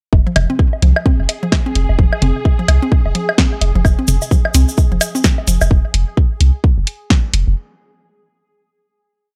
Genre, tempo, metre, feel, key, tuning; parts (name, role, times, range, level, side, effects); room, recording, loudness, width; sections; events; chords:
minimal techno; 129 BPM; 4/4; swing 60% on 16ths; F minor; A4 = 440 Hz
punchy sub bass; bass; 0.1-7.5 s; F1 to C2; -16 LUFS; equal; sidechain pumping
electronic kick drum; drums; 0.1-7.2 s; -15 LUFS; equal
electronic woodblock and toms; percussion; 0.1-5.7 s; -22 LUFS; equal; tape echo
swarming drone; texture; 1.0-5.7 s; Ab4; -32 LUFS; equal; built-in reverb, sidechain pumping
mallet-like synth pluck; riff; 0.3-5.5 s; F3 to C4; -25 LUFS; equal; chorus, sidechain pumping, tape echo
house drum kit; drums; 0.4-7.4 s; hi-hat, snare drum; -19 LUFS; equal
tube shaker; percussion; 3.9-5.7 s; -26 LUFS; equal
digital ambience; dry, gritty hardware recording; -15 LUFS; mono
0.1-7.6 drop
drop 0.1-7.6
0.1 Fm